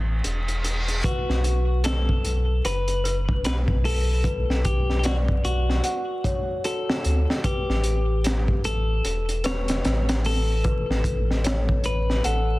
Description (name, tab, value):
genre	trip hop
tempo	75 BPM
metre	4/4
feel	swing 60% on 16ths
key	B minor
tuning	A4 = 439 Hz
part	warm sub bass	bass	0.0-12.6 s	E1 to D2	-24 LUFS	equal	tube saturation
part	reverse cymbal	sound effects	0.0-1.0 s	none	-31 LUFS	equal	none
part	crunchy breakbeat drum kit	drums	0.2-12.5 s	hi-hat, kick drum, snare drum	-26 LUFS	equal	none
part	celesta	arpeggios	1.0-12.6 s	F#4 to F#5	-32 LUFS	left 3 dB	tape echo
part	clean electric guitar	melody	1.1-12.6 s	F#4 to C#5	-29 LUFS	left 2 dB	tape echo
room	little or no reverb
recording	dense, heavily limited modern master, vinyl crackle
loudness	-21 LUFS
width	side -19 dB against mid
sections	0.0-12.6 A section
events	reverse cymbal 0.0-1.0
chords	0.0 A5; 1.0 Bm7; 7.4 A7